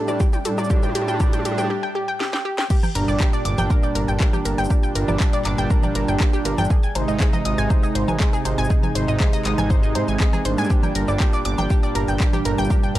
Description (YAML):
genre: melodic techno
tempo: 120 BPM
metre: 4/4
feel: straight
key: unclear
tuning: A4 = 440 Hz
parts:
  - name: brassy analog pad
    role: stabs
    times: 0.0-13.0 s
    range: A2 to Eb4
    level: -24 LUFS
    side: right 2 dB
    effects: chorus, sidechain pumping, tape echo
  - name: analog pluck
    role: arpeggios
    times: 0.1-13.0 s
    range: G4 to Ab6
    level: -26 LUFS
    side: equal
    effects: chorus, sidechain pumping, tape echo
  - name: house drum kit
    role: drums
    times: 0.1-13.0 s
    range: congas, crash cymbal, handclaps, hi-hat, shaker, snare drum, toms, woodblock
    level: -28 LUFS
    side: equal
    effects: overdrive, high-pass filter on hats, small room ambience, high-pass filter on toms, high-pass filter on perc, high-pass filter on snare, high-pass filter on cymbals
  - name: electronic kick drum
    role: drums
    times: 0.2-12.8 s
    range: none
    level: -18 LUFS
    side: equal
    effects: overdrive, small room ambience
  - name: fat analog bass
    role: bass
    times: 3.0-13.0 s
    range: G1 to Ab2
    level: -23 LUFS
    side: equal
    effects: sidechain pumping
  - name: analog drone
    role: drone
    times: 11.7-13.0 s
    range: G2 to G3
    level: -32 LUFS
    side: equal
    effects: chorus, sidechain pumping
room: digital ambience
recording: dry, gritty hardware recording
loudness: -18 LUFS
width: side -14 dB against mid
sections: 0.0-2.7 A section; 2.7-13.0 B section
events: build-up 0.0-2.7; drum fill 0.0-1.7, 2.2-2.7; filter sweep on analog synth pad 0.0-2.7; break 1.7-2.7; drop 2.7-13.0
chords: 0.0 A7sus4; 2.7 Gm; 6.7 Ab; 10.7 Gm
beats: 0.20 | 0.70 1.20 1.70 2.20 | 2.70 3.20 3.70 4.20 | 4.70 5.20 5.70 6.20 | 6.70 7.20 7.70 8.20 | 8.70 9.20 9.70 10.20 | 10.70 11.20 11.70 12.20 | 12.70